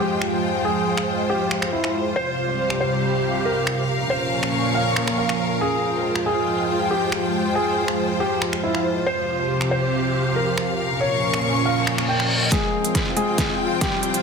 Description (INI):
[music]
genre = heavy wobble dubstep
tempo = 139 BPM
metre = 4/4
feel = half-time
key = F minor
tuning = A4 = 440 Hz
[part]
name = felt-muted upright piano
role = melody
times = 0.0-14.2 s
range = G3 to G5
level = -25 LUFS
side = equal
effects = ping-pong delay
[part]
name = lush unison pad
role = sustained chords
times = 0.0-14.2 s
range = Bb2 to F4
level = -24 LUFS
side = right 1 dB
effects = chorus, phaser, sidechain pumping
[part]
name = warm symphonic string section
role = texture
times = 0.0-14.2 s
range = F4 to Db6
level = -25 LUFS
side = left 1 dB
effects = sidechain pumping
[part]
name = dubstep drum kit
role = drums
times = 0.2-14.2 s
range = finger snaps, hi-hat, snare drum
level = -26 LUFS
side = right 1 dB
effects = soft clipping on snare, studio ambience
[part]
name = reverse cymbal and riser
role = sound effects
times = 11.8-14.2 s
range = none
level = -26 LUFS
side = left 1 dB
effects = none
[part]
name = electronic kick drum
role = drums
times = 12.5-13.9 s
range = none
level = -26 LUFS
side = equal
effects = studio ambience
[sound]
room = moderate digital room reverb, RT60 1.1 s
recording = dense, heavily limited modern master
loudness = -19 LUFS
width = side -5 dB against mid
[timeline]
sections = 0.0-12.5 A section; 12.5-14.2 B section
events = reverse cymbal 11.8-12.5; build-up 12.5-14.2; drum fill 12.5-14.2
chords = 0.0 Fmadd9; 2.2 Csus4; 3.9 Bbm; 5.6 Fmadd9; 9.1 Csus4; 10.8 Bbm; 12.5 Fmadd9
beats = 0.00 | 0.43 0.86 1.29 1.73 | 2.16 2.59 3.02 3.45 | 3.88 4.32 4.75 5.18 | 5.61 6.04 6.47 6.91 | 7.34 7.77 8.20 8.63 | 9.06 9.50 9.93 10.36 | 10.79 11.22 11.65 12.09 | 12.52 12.95 13.38 13.81